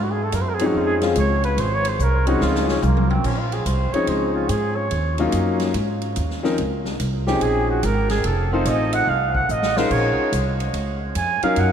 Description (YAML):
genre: jazz, small-group swing and bop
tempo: 144 BPM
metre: 4/4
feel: swing 66% on 8ths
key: Db major, Bb minor from 3.2 s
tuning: A4 = 440 Hz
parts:
  - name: dark trumpet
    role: second line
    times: 0.0-11.7 s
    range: Bb3 to Ab5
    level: -23 LUFS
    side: right 3 dB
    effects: none
  - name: upright bass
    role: bass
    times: 0.0-11.7 s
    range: F1 to Ab2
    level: -23 LUFS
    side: equal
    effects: none
  - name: swinging big-band drum kit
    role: drums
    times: 0.3-11.7 s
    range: crash cymbal, hi-hat, kick drum, ride cymbal, snare drum, toms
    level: -30 LUFS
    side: equal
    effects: none
  - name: clear grand piano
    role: accompaniment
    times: 0.6-11.7 s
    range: F3 to Bb4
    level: -23 LUFS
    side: left 3 dB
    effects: none
room: wet cathedral reverb, RT60 5.8 s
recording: in a vast, echoing space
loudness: -18 LUFS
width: side -8 dB against mid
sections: 0.0-3.2 A section; 3.2-11.7 A section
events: trumpet solo 0.0-11.7; drum fill 2.4-3.2, 9.5-9.9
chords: 0.0 Dbmaj7; 3.2 Bbm11; 4.9 Ebm7; 5.7 Abadd9; 6.6 Dbmaj9; 8.2 F7; 9.9 Bbm9